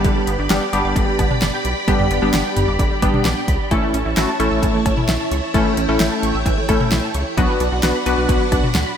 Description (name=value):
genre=synth-pop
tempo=131 BPM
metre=4/4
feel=straight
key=unclear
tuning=A4 = 440 Hz
part: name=funky polysynth comp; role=accompaniment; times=0.0-8.6 s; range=G3 to B4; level=-20 LUFS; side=left 2 dB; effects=chorus
part: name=string machine, full ensemble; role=sustained chords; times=0.0-9.0 s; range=E4 to B5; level=-23 LUFS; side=equal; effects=ensemble chorus
part: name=wide unison pluck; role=arpeggios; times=0.0-8.9 s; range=D3 to F#6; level=-25 LUFS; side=right 3 dB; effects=ensemble chorus, digital delay
part: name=rubbery square bass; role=bass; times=0.0-8.8 s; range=G1 to D2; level=-23 LUFS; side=equal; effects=none
part: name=pop drum kit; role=drums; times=0.0-8.9 s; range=cowbell, hi-hat, kick drum, snare drum, toms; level=-20 LUFS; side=equal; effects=none
room=moderate lush hall reverb, RT60 2.0 s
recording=bright 1980s-style digital production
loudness=-15 LUFS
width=side -8 dB against mid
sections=0.0-9.0 A section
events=none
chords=0.0 G; 3.7 A; 7.4 Bm